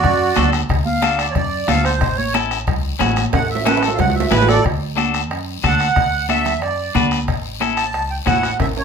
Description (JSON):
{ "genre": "latin, cumbia", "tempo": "182 BPM", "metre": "4/4", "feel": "straight", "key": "D major", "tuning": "A4 = 438 Hz", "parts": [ { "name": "accordion", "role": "melody", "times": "0.0-8.8 s", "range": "F#4 to A5", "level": "-19 LUFS", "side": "right 4 dB", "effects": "light tremolo tuning" }, { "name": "upright bass", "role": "bass", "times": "0.0-8.8 s", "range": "A1 to F#2", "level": "-23 LUFS", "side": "equal", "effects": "none" }, { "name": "bombo", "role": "percussion", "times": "0.0-8.8 s", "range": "none", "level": "-23 LUFS", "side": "left 3 dB", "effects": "none" }, { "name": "congas", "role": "percussion", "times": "0.0-8.8 s", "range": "none", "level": "-24 LUFS", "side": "right 2 dB", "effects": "none" }, { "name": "cowbell and timbales", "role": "percussion", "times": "0.0-8.8 s", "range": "none", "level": "-25 LUFS", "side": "right 5 dB", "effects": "none" }, { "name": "guiro", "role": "percussion", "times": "0.0-8.8 s", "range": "none", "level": "-31 LUFS", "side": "left 7 dB", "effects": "none" }, { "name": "clean electric guitar", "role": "accompaniment", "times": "0.4-8.5 s", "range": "C#4 to B4", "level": "-21 LUFS", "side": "left 8 dB", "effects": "none" } ], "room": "moderate studio reverb, RT60 0.7 s", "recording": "minimal, uncompressed stereo recording", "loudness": "-15 LUFS", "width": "side -6 dB against mid", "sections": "0.0-4.6 A section; 4.6-8.8 B section", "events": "accordion solo 0.0-4.6; drum fill 3.3-4.6, 8.6", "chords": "0.0 D; 2.0 A; 4.6 D; 7.3 A" }